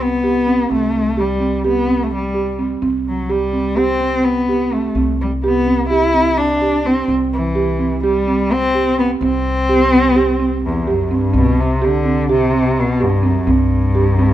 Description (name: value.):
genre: contemporary instrumental, chamber music in an uneven meter.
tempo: 254 BPM (eighths).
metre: 9/8.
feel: straight.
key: C lydian.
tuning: A4 = 441 Hz.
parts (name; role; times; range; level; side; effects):
warm cello; melody; 0.0-14.3 s; E2 to E4; -16 LUFS; left 2 dB; none.
buzzing marimba with soft mallets; arpeggios; 0.0-14.3 s; C4 to G4; -18 LUFS; right 5 dB; none.
upright bass; bass; 0.0-14.3 s; C2; -23 LUFS; left 2 dB; none.
room: moderate recital hall reverb, RT60 1.3 s.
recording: minimal, uncompressed stereo recording.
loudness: -14 LUFS.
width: side -12 dB against mid.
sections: 0.0-11.3 A section; 11.3-14.3 B section.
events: none.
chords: 0.0 C5.